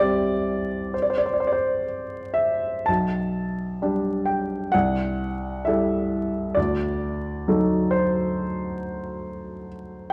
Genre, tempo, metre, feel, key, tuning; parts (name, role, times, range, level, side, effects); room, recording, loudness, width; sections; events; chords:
classical, romantic nocturne for solo piano; 56-70 BPM; 4/4; rubato; A4 = 439 Hz
warm baby grand piano; solo; 0.0-10.1 s; B1 to A5; -24 LUFS; equal
moderate recital hall reverb, RT60 1.6 s; vinyl crackle; -24 LUFS; mono
0.0-10.1 A section
0.0 C; 2.9 G/B; 4.7 Am7/C; 6.6 D7b9